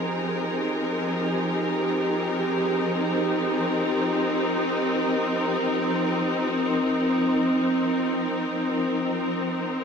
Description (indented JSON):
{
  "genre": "ambient",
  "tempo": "free time",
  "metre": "none",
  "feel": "none",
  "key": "F minor",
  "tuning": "A4 = 440 Hz",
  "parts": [
    { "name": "rich studio string section", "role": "solo", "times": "0.0-9.8 s", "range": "F3 to Bb4", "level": "-22 LUFS", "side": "equal", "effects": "ping-pong delay" }
  ],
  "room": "wet huge ambient reverb, RT60 8.2 s",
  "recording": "dreamy mix soaked in reverb",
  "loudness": "-22 LUFS",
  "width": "side -6 dB against mid",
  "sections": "0.0-9.8 A section",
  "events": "none",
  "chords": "0.0 Fm11; 4.7 Cm7/F",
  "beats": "free time"
}